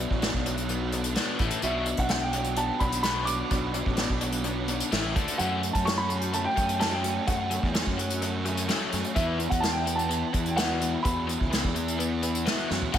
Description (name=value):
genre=indie rock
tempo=128 BPM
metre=4/4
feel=straight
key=B minor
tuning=A4 = 439 Hz
part: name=dark upright piano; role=melody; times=0.0-13.0 s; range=D5 to D6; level=-31 LUFS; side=right 1 dB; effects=tape echo
part: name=overdriven electric guitar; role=riff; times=0.0-13.0 s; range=E3 to A4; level=-32 LUFS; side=left 8 dB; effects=wide subtle chorus
part: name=thick fuzz guitar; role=riff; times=0.0-13.0 s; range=E2 to A4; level=-33 LUFS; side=right 6 dB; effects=distortion, ensemble chorus, tape echo
part: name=fuzz fingered electric bass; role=bass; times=0.0-13.0 s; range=A1 to F#2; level=-32 LUFS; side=equal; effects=overdrive
part: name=unplugged drum kit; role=drums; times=0.1-13.0 s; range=crash cymbal, hi-hat, kick drum, snare drum, toms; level=-30 LUFS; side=equal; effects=none
room=moderate lush hall reverb, RT60 2.1 s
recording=dreamy mix soaked in reverb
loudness=-24 LUFS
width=side -10 dB against mid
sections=0.0-12.9 A section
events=drum fill 12.7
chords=0.0 Bm; 1.4 A5; 1.6 Bm; 4.9 A5; 5.2 D5; 5.4 F#m; 9.2 Esus2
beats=0.23 0.70 1.17 | 1.64 2.11 2.58 3.05 | 3.52 3.99 4.46 4.93 | 5.40 5.87 6.34 6.81 | 7.28 7.75 8.22 8.69 | 9.16 9.63 10.11 10.58 | 11.05 11.52 11.99 12.47 | 12.94